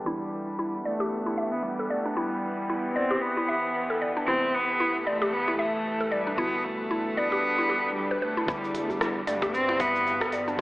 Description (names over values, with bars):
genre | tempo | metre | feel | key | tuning
organic downtempo | 114 BPM | 4/4 | swing 57% on 16ths | unclear | A4 = 441 Hz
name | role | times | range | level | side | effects
muted felt-like synth keys | accompaniment | 0.0-10.6 s | E2 to G4 | -41 LUFS | equal | chorus, sidechain pumping, analog delay, shimmer reverb
bowed-like drone | sustained chords | 0.0-10.6 s | E2 to F#5 | -34 LUFS | equal | built-in reverb, sidechain pumping, shimmer reverb
warm cello | melody | 0.1-10.3 s | G3 to C4 | -28 LUFS | equal | diffuse ambient delay, shimmer reverb
mallet-like synth pluck | arpeggios | 0.1-10.6 s | D4 to E5 | -29 LUFS | equal | chorus, analog delay, shimmer reverb
smooth synth bass | bass | 8.5-10.6 s | E2 to G2 | -36 LUFS | equal | sidechain pumping
electronic kick drum | drums | 8.5-10.6 s | none | -32 LUFS | equal | none
organic electronic drum kit | drums | 8.5-10.6 s | hi-hat, rim click, shaker | -33 LUFS | equal | none
djembe | percussion | 8.7-10.4 s | none | -39 LUFS | right 1 dB | none
room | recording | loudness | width
wet plate reverb, RT60 1.4 s, digital ambience | dreamy mix soaked in reverb, low-pass filter, AM radio sound | -25 LUFS | side -19 dB against mid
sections
0.0-8.5 A section; 8.5-10.6 B section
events
filter sweep 0.0-8.5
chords
0.0 Gmaj7/E; 4.3 Am7; 6.4 Gmaj7/E